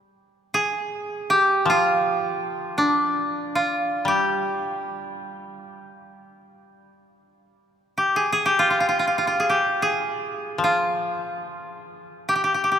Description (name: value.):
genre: japanese traditional, Japanese chamber music.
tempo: free time.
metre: none.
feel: none.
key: unclear.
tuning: A4 = 440 Hz.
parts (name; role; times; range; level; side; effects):
koto; melody; 0.5-12.8 s; D4 to Ab4; -21 LUFS; equal; none.
koto; accompaniment; 1.7-12.8 s; F3 to G3; -28 LUFS; left 2 dB; none.
room: moderate cathedral reverb, RT60 5.1 s.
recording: minimal, uncompressed stereo recording.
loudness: -20 LUFS.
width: side -9 dB against mid.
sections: 0.0-12.8 A section.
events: none.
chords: none.